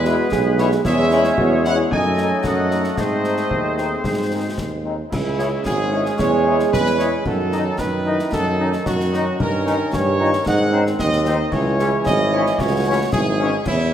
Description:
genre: military-style march for wind band.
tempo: 112 BPM.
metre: 2/4.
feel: straight.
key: C# minor.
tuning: A4 = 438 Hz.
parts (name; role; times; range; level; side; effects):
mellow trumpet section; melody; 0.0-13.9 s; E4 to G#5; -23 LUFS; equal; none.
clear woodwind section; second line; 0.0-13.5 s; D#4 to D#5; -27 LUFS; left 2 dB; none.
mellow euphonium; second line; 0.0-13.8 s; B#3 to G#4; -25 LUFS; right 4 dB; none.
clear trombone section; sustained chords; 0.0-13.7 s; D#3 to D#4; -26 LUFS; equal; none.
warm tuba; bass; 0.0-13.9 s; G#1 to G#2; -21 LUFS; right 1 dB; none.
concert snare drum, concert bass drum and clash cymbals; drums; 0.0-13.9 s; none; -28 LUFS; left 1 dB; none.
clear French horn section; accompaniment; 0.1-13.9 s; D#3 to E4; -28 LUFS; left 5 dB; none.
room: moderate concert hall reverb, RT60 1.8 s.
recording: none.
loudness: -16 LUFS.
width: side -9 dB against mid.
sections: 0.0-5.1 A section; 5.1-13.9 B section.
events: none.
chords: 0.0 E; 0.8 C#m/E; 1.9 D#dim/F#; 3.0 G#; 5.1 C#m; 6.2 C#m/E; 7.3 D#dim/F#; 9.4 D#7/G; 10.5 G#7; 11.5 C#m.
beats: 0.31 | 0.85 1.38 | 1.92 2.45 | 2.98 3.52 | 4.05 4.59 | 5.12 5.66 | 6.19 6.72 | 7.26 7.79 | 8.33 8.86 | 9.39 9.93 | 10.46 11.00 | 11.53 12.06 | 12.60 13.13 | 13.67.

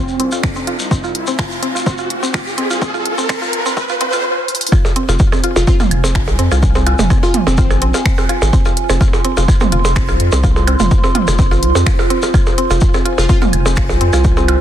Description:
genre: minimal techno.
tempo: 126 BPM.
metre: 4/4.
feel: straight.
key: F minor.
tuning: A4 = 440 Hz.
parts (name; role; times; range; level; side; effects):
plucky unison lead; melody; 0.0-0.5, 5.6-8.1, 13.2-13.4 s; C4 to F4; -21 LUFS; left 1 dB; ping-pong delay.
riser; sound effects; 0.1-4.2 s; none; -21 LUFS; right 1 dB; none.
warbly tape-like pad; texture; 0.1-14.6 s; F4 to C6; -23 LUFS; right 2 dB; chorus, built-in reverb, sidechain pumping.
shekere; percussion; 0.1-14.5 s; none; -27 LUFS; left 3 dB; none.
mallet-like synth pluck; riff; 0.2-14.5 s; C4 to F4; -21 LUFS; equal; chorus, sidechain pumping, ping-pong delay.
saturated sub bass; bass; 0.2-14.6 s; F1 to F2; -16 LUFS; equal; sidechain pumping, high-pass filter.
techno drum kit; drums; 0.2-14.6 s; finger snaps, hi-hat; -24 LUFS; equal; overdrive, soft clipping on snare.
electronic kick drum; drums; 0.4-14.3 s; none; -14 LUFS; equal; none.
electronic claves, percussion blips and toms; percussion; 4.7-14.6 s; none; -20 LUFS; right 4 dB; ping-pong delay.
room: little or no reverb.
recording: dense, heavily limited modern master, high-pass filter.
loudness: -12 LUFS.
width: side -11 dB against mid.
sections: 0.0-4.7 A section; 4.7-14.6 B section.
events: build-up 0.0-4.7; filter sweep on synth arpeggio sound 0.0-4.7; filter sweep 0.0-4.7; riser 0.1-4.2; drum fill 4.5; drop 4.7-14.6.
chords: 0.0 Fm.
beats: 0.44 | 0.91 1.39 1.86 2.34 | 2.82 3.29 3.77 4.25 | 4.72 5.20 5.67 6.15 | 6.63 7.10 7.58 8.05 | 8.53 9.01 9.48 9.96 | 10.44 10.91 11.39 11.87 | 12.34 12.82 13.29 13.77 | 14.25.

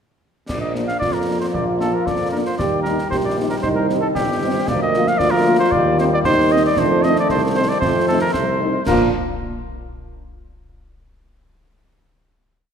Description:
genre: military-style march for wind band.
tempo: 115 BPM.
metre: 2/4.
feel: straight.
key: Bb major.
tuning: A4 = 442 Hz.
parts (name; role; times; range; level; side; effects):
mellow cornet; melody; 0.5-9.1 s; G4 to F5; -21 LUFS; equal; none.
warm euphonium; second line; 0.5-8.5 s; A3 to G4; -22 LUFS; equal; none.
warm trombone section; sustained chords; 0.5-9.1 s; Eb3 to D4; -26 LUFS; right 1 dB; none.
warm tuba; bass; 0.5-9.1 s; G1 to Bb2; -23 LUFS; right 2 dB; none.
concert snare drum, clash cymbals and concert bass drum; drums; 0.5-9.2 s; none; -28 LUFS; left 1 dB; none.
mellow French horn section; accompaniment; 0.7-9.1 s; F3 to F4; -25 LUFS; left 3 dB; none.
room: wet concert hall reverb, RT60 2.2 s.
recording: minimal, uncompressed stereo recording.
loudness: -16 LUFS.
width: side -7 dB against mid.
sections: 0.5-8.9 A section; 8.9-9.9 final chord.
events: none.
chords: 0.5 Bb; 2.6 Eb; 3.6 Cm; 4.7 Bb/D; 5.7 Cm/Eb; 6.8 F7; 8.9 Bb.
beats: | 0.49 1.01 | 1.54 2.06 | 2.58 3.11 | 3.63 4.15 | 4.68 5.20 | 5.72 6.25 | 6.77 7.30 | 7.82 8.34 | 8.87.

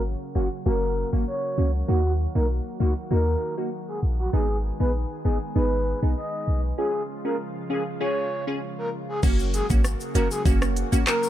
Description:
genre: dancehall.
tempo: 98 BPM.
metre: 4/4.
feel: straight.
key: unclear.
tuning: A4 = 441 Hz.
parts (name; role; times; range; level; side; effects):
wavetable chord stab; accompaniment; 0.0-11.0 s; Bb3 to Ab4; -29 LUFS; right 1 dB; none.
lush unison pad; sustained chords; 0.0-11.3 s; Db3 to Ab4; -34 LUFS; equal; chorus, sidechain pumping.
clean 808-style bass; bass; 0.0-11.0 s; Gb1 to Eb2; -24 LUFS; equal; none.
breathy flute-like synth lead; melody; 0.4-11.3 s; Gb4 to Eb5; -29 LUFS; equal; chorus, tape echo.
island pop drum kit; drums; 9.2-11.3 s; crash cymbal, handclaps, hi-hat, kick drum, rim click, shaker; -23 LUFS; equal; overdrive.
tube shaker; percussion; 9.2-11.3 s; none; -38 LUFS; left 10 dB; none.
room: digital ambience.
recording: low-pass filter.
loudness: -22 LUFS.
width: side -12 dB against mid.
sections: 0.0-9.2 A section; 9.2-11.3 B section.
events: filter sweep 0.0-9.2; break 6.8-9.2.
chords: 0.0 Gb; 1.9 Ebm; 4.3 Abm; 6.8 Db; 9.2 Gb.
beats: 0.05 0.66 1.27 | 1.89 2.50 3.11 3.72 | 4.33 4.95 5.56 6.17 | 6.78 7.39 8.01 8.62 | 9.23 9.84 10.46 11.07.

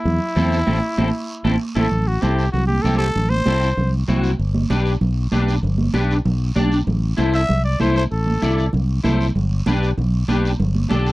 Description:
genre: latin, cumbia.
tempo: 194 BPM.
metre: 4/4.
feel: straight.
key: A dorian.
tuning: A4 = 441 Hz.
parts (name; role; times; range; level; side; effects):
growling trumpet; melody; 0.0-3.9, 7.3-8.7 s; E4 to E5; -23 LUFS; equal; none.
fingered electric bass; bass; 0.1-11.1 s; G1 to E2; -19 LUFS; equal; none.
congas; percussion; 0.1-11.1 s; none; -23 LUFS; right 2 dB; none.
guiro; percussion; 0.1-11.1 s; none; -38 LUFS; right 3 dB; none.
electric guitar at the edge of break-up; accompaniment; 0.4-11.1 s; C4 to D5; -22 LUFS; left 2 dB; ensemble chorus.
room: little or no reverb.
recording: dark, warm production.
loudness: -17 LUFS.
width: side -19 dB against mid.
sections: 0.0-1.9 A section; 1.9-11.1 B section.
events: band accent 0.7-1.9.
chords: 0.0 Am; 4.4 G; 6.9 Am; 9.4 G.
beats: 0.06 0.36 | 0.68 0.98 1.29 1.61 | 1.92 2.23 2.54 2.85 | 3.16 3.47 3.78 4.09 | 4.40 4.71 5.02 5.33 | 5.64 5.95 6.26 6.57 | 6.88 7.19 7.50 7.81 | 8.12 8.43 8.74 9.05 | 9.36 9.67 9.98 10.29 | 10.60 10.91.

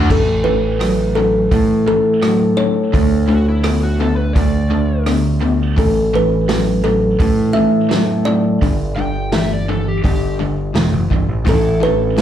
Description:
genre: classic rock.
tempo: 84 BPM.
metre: 4/4.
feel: straight.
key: unclear.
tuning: A4 = 440 Hz.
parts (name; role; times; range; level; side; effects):
overdriven slide guitar; second line; 0.0-10.4 s; E4 to G5; -25 LUFS; left 4 dB; plate reverb, slapback echo.
picked twelve-string acoustic guitar; accompaniment; 0.0-0.1, 11.5-12.2 s; A2 to A4; -26 LUFS; equal; plate reverb, slapback echo.
biting overdriven guitar; riff; 0.0-12.2 s; G2 to B3; -22 LUFS; right 9 dB; slapback echo.
overdriven semi-hollow guitar; riff; 0.0-12.2 s; G2 to B3; -21 LUFS; left 8 dB; slapback echo.
growling picked electric bass; bass; 0.0-12.2 s; E1 to A2; -18 LUFS; right 1 dB; overdrive.
kalimba; melody; 0.1-12.2 s; A4 to E5; -18 LUFS; left 1 dB; plate reverb, slapback echo.
vintage drum kit; drums; 0.1-12.2 s; crash cymbal, hi-hat, kick drum, rim click, snare drum; -18 LUFS; right 1 dB; none.
room: light reverb.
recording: live gig heard through the venue's PA, club reverb.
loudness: -13 LUFS.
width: side -10 dB against mid.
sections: 0.1-12.2 A section.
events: none.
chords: 0.1 A5; 2.9 D5; 5.8 A5; 8.6 G5; 11.5 A.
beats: | 0.10 0.81 1.52 2.23 | 2.93 3.64 4.35 5.07 | 5.78 6.49 7.20 7.91 | 8.62 9.33 10.04 10.75 | 11.46 12.18.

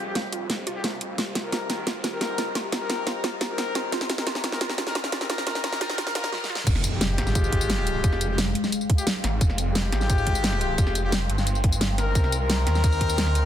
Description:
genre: dark technical drum and bass.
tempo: 175 BPM.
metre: 4/4.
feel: straight.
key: F minor.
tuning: A4 = 442 Hz.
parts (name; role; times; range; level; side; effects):
deep dark ambient pad; sustained chords; 0.0-13.5 s; Ab3 to C6; -34 LUFS; left 2 dB; chorus, built-in reverb, sidechain pumping.
bright brass ensemble; stabs; 0.0-13.5 s; Ab3 to Bb4; -30 LUFS; left 3 dB; low-pass filter, digital delay.
snarling distorted saw bass; bass; 0.0-13.5 s; F1 to Eb2; -28 LUFS; equal; distortion, overdrive, high-pass filter.
warbly dusty pluck; arpeggios; 0.2-6.6 s; F4; -34 LUFS; right 4 dB; chorus, phaser, vintage 12-bit sampler grit, sidechain pumping, digital delay.
dubstep drum kit; drums; 0.2-13.4 s; crash cymbal, hi-hat, snare drum, tambourine; -27 LUFS; equal; none.
electronic kick drum; drums; 6.7-13.1 s; none; -22 LUFS; equal; overdrive.
impact; sound effects; 6.7-8.0 s; none; -32 LUFS; right 1 dB; none.
room: light reverb.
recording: dense, heavily limited modern master, high-pass filter.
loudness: -22 LUFS.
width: side -10 dB against mid.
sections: 0.0-6.7 A section; 6.7-13.5 B section.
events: build-up 0.0-6.7; drum fill 0.0-6.3, 6.3-6.7; filter sweep on brass ensemble 0.0-6.7; drop 6.7-13.5; impact 6.7-8.0.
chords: 0.0 Fmadd9; 1.2 Cm7; 6.7 Fmadd9; 12.2 Cm7.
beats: 0.15 0.50 0.84 | 1.18 1.52 1.87 2.21 | 2.55 2.90 3.24 3.58 | 3.92 4.27 4.61 4.95 | 5.30 5.64 5.98 6.33 | 6.67 7.01 7.35 7.70 | 8.04 8.38 8.72 9.07 | 9.41 9.75 10.10 10.44 | 10.78 11.12 11.47 11.81 | 12.15 12.50 12.84 13.18.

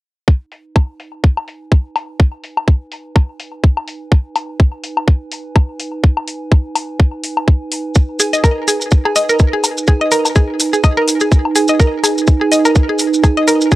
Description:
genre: minimal techno.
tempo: 125 BPM.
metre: 4/4.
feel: swing 56% on 16ths.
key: G# minor.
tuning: A4 = 440 Hz.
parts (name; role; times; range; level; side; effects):
electronic kick drum; drums; 0.3-13.8 s; none; -10 LUFS; equal; none.
warbly tape-like pad; texture; 0.7-13.8 s; D#4 to G#5; -20 LUFS; right 4 dB; chorus, built-in reverb, sidechain pumping.
electronic hi-hat; drums; 0.5-13.6 s; none; -23 LUFS; left 2 dB; low-pass filter on hats.
woodblock; percussion; 0.8-13.3 s; none; -20 LUFS; left 4 dB; analog delay.
maracas; percussion; 7.9-13.8 s; none; -18 LUFS; right 1 dB; none.
mallet-like synth pluck; riff; 8.2-13.8 s; G#4 to D#5; -16 LUFS; left 1 dB; chorus, sidechain pumping, tape echo.
room: little or no reverb.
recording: dry, gritty hardware recording, cassette tape.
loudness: -12 LUFS.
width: side -17 dB against mid.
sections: 0.3-13.8 A section.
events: fade-in on ambient pad 0.3-13.8.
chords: 0.3 G#m.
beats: | 0.28 0.76 1.24 1.72 | 2.20 2.68 3.16 3.64 | 4.12 4.60 5.08 5.56 | 6.04 6.52 7.00 7.48 | 7.96 8.44 8.92 9.40 | 9.88 10.36 10.84 11.32 | 11.80 12.28 12.76 13.24 | 13.72.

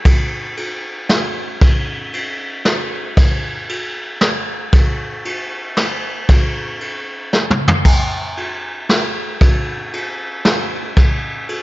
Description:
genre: country.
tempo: 116 BPM.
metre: 3/4.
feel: straight.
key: none.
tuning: none.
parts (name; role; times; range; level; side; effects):
vintage brush drum kit; drums; 0.1-11.6 s; crash cymbal, kick drum, ride cymbal, snare drum, toms; -15 LUFS; equal; none.
room: light reverb.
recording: nothing above 7.5 kHz.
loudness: -15 LUFS.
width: side -18 dB against mid.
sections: 0.0-7.9 A section; 7.9-11.6 B section.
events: drum fill 7.3-7.9.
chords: none.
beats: | 0.06 0.58 1.10 | 1.62 2.13 2.65 | 3.17 3.69 4.21 | 4.73 5.25 5.77 | 6.29 6.81 7.33 | 7.85 8.37 8.89 | 9.41 9.93 10.45 | 10.97 11.49.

